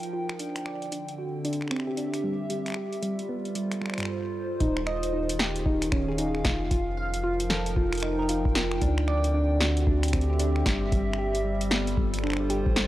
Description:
IDM; 114 BPM; 4/4; swing 62% on 16ths; A4 = 440 Hz
warbly tape-like pad; sustained chords; 0.0-12.9 s; D3 to G5; -32 LUFS; right 1 dB; chorus, built-in reverb, phaser
electro analog drum machine; drums; 0.0-12.9 s; finger snaps, hi-hat, snare drum; -30 LUFS; equal
harp-like synth pluck; arpeggios; 0.1-12.9 s; G2 to F5; -30 LUFS; equal; chorus, tape echo
rubbery square bass; bass; 4.6-12.9 s; Eb1 to D2; -29 LUFS; equal
electronic kick drum; drums; 4.6-12.7 s; -27 LUFS; equal
little or no reverb; dry, gritty hardware recording; -25 LUFS; side -15 dB against mid
0.0-4.6 A section; 4.6-12.9 B section
filter sweep on synth pluck 0.0-4.6; break 4.1-4.6
0.4 D9sus4; 2.2 G9sus4; 4.6 Eb9sus4; 6.4 F9sus4; 8.8 D9sus4; 10.7 G9sus4

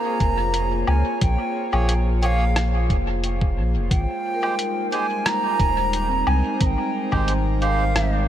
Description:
ambient dub; 89 BPM; 4/4; swing 53% on 16ths; Bb dorian; A4 = 440 Hz
bright wooden flute; melody; 0.0-8.2 s; F5 to Bb5; -25 LUFS; right 2 dB; dub echo
airy breathy pad; sustained chords; 0.0-8.3 s; G3 to Db5; -28 LUFS; equal; chorus
vibraphone with medium mallets; arpeggios; 0.0-8.3 s; C4 to Bb5; -32 LUFS; left 1 dB; tape echo
soft dub sub bass; bass; 0.2-8.3 s; Eb1 to Db2; -22 LUFS; equal
electronic kick drum; drums; 0.2-7.2 s; -22 LUFS; equal
lo-fi sampler-style drum kit; drums; 0.2-8.1 s; hi-hat, rim click, woodblock; -29 LUFS; left 1 dB; dub echo
melodica; stabs; 1.7-7.8 s; Ab3 to Db5; -32 LUFS; right 2 dB; dub echo
light reverb; -19 LUFS; side -11 dB against mid
0.0-8.3 A section
0.0 Bbm7; 3.9 Abmaj7

